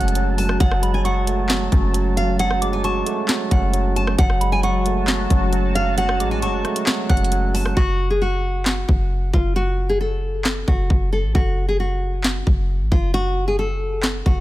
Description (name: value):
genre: hip hop, trap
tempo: 134 BPM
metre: 4/4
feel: half-time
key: F# minor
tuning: A4 = 436 Hz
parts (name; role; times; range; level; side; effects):
- nylon-string guitar; melody; 0.0-14.4 s; E#4 to A5; -24 LUFS; equal; none
- soft synth bell; second line; 0.0-7.7 s; B5 to F#6; -31 LUFS; left 2 dB; chorus, phaser, tape echo
- overdriven tine electric piano; accompaniment; 0.0-7.8 s; F#3 to C#4; -24 LUFS; right 5 dB; none
- sweeping resonant pad; sustained chords; 0.0-7.7 s; F#3 to A5; -29 LUFS; left 3 dB; chorus
- clean 808-style bass; bass; 0.0-14.4 s; F#1 to A1; -21 LUFS; equal; none
- trap drum kit; drums; 0.0-14.4 s; handclaps, hi-hat, kick drum, rim click, snare drum; -20 LUFS; equal; none
room: digital ambience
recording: none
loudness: -17 LUFS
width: side -16 dB against mid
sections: 0.0-7.8 A section; 7.8-14.4 B section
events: hi-hats muted 7.8-14.4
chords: 0.0 F#madd9; 7.8 N.C.